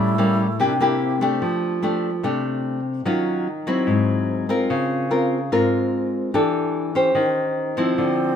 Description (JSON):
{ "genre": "bossa nova", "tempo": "146 BPM", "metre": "4/4", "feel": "straight", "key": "unclear", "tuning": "A4 = 441 Hz", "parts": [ { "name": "alto flute", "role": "second line", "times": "0.0-1.4, 8.0-8.4 s", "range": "C4 to E4", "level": "-27 LUFS", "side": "right 3 dB", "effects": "none" }, { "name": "nylon-string guitar", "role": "accompaniment", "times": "0.0-8.4 s", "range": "Ab2 to C5", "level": "-19 LUFS", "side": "left 1 dB", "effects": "none" } ], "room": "moderate echo chamber reverb, RT60 2.2 s", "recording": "minimal, uncompressed stereo recording", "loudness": "-19 LUFS", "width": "side -8 dB against mid", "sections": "0.0-1.4 A section; 1.4-8.4 B section", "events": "none", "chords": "0.0 A7b9; 0.6 C7; 1.4 F69; 3.1 Ebm9; 3.9 Abaug7; 4.7 Db6; 6.3 Em7; 7.2 Eb13", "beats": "0.19 0.60 1.01 | 1.42 1.83 2.24 2.65 | 3.06 3.47 3.88 4.29 | 4.70 5.11 5.52 5.93 | 6.34 6.75 7.16 7.57 | 7.97" }